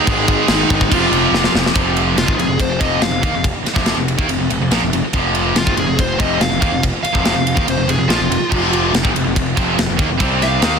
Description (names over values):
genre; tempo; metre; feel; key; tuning
hard rock; 142 BPM; 4/4; straight; unclear; A4 = 440 Hz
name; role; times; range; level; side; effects
dark smooth lead guitar; melody; 0.0-10.8 s; Eb4 to F5; -21 LUFS; left 1 dB; overdrive, tape echo
cranked stack guitar; riff; 0.0-10.8 s; F2 to Eb4; -20 LUFS; right 13 dB; overdrive
overdriven electric guitar; riff; 0.0-10.8 s; F2 to Eb4; -21 LUFS; left 13 dB; none
fuzz picked electric bass; bass; 0.1-10.8 s; F1 to Eb2; -21 LUFS; equal; overdrive
tight metal drum kit; drums; 0.1-10.7 s; crash cymbal, kick drum, ride cymbal, snare drum; -18 LUFS; equal; soft clipping on kick
room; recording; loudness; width
light reverb; dense, heavily limited modern master; -13 LUFS; side -6 dB against mid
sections
0.0-1.8 A section; 1.8-10.8 B section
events
drum fill 1.3-1.8; lead electric guitar solo 1.8-10.8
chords
0.1 Ab5; 0.9 F5; 10.2 C5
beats
| 0.07 0.49 0.91 1.33 | 1.76 2.18 2.60 3.02 | 3.44 3.87 4.29 4.71 | 5.14 5.56 5.98 6.40 | 6.83 7.25 7.67 8.09 | 8.52 8.94 9.36 9.78 | 10.20 10.62